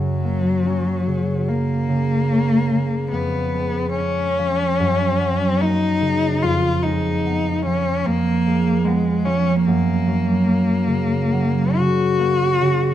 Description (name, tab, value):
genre	classical, romantic duo for cello and harp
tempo	73 BPM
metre	4/4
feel	rubato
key	F# major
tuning	A4 = 440 Hz
part	rich cello	melody	0.0-12.9 s	F#3 to F#4	-21 LUFS	left 2 dB	none
part	concert harp	accompaniment	0.0-12.9 s	E#2 to C#4	-19 LUFS	right 1 dB	none
room	moderate recital hall reverb, RT60 1.4 s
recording	close, detailed microphones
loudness	-17 LUFS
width	side -11 dB against mid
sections	0.0-12.9 A section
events	none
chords	0.0 F#; 3.1 C#7/E#; 4.8 F#; 6.4 C#7/E#; 9.7 F#